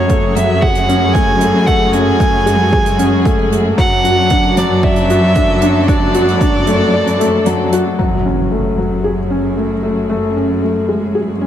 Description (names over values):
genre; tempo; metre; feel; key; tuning
piano and strings electronica; 114 BPM; 4/4; straight; F# minor; A4 = 438 Hz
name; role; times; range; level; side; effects
warm violin; melody; 0.0-7.7 s; C#5 to G#5; -17 LUFS; right 1 dB; none
rich studio string section; sustained chords; 0.0-11.5 s; F#3 to A4; -23 LUFS; left 1 dB; sidechain pumping
felt-muted upright piano; riff; 0.0-11.5 s; F#3 to D5; -15 LUFS; left 2 dB; ping-pong delay
warm chamber cello section; bass; 0.0-11.5 s; F#2; -18 LUFS; right 1 dB; sidechain pumping
electronic kick drum; drums; 0.1-6.5 s; none; -16 LUFS; right 1 dB; overdrive
hi-hat; drums; 0.1-7.8 s; none; -30 LUFS; right 7 dB; low-pass filter on hats, low-pass filter on room
impact; sound effects; 8.0-10.1 s; none; -22 LUFS; right 1 dB; none
room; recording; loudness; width
light reverb, studio reverb; none; -11 LUFS; side -10 dB against mid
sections
0.0-8.0 A section; 8.0-11.5 B section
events
kick drops out 6.9-8.0; impact 8.0-10.1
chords
0.0 F#madd9; 3.8 D/F#; 8.0 F#madd9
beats
0.09 0.62 1.15 | 1.67 2.20 2.73 3.25 | 3.78 4.30 4.83 5.36 | 5.88 6.41 6.94 7.46 | 7.99 8.52 9.04 9.57 | 10.09 10.62 11.15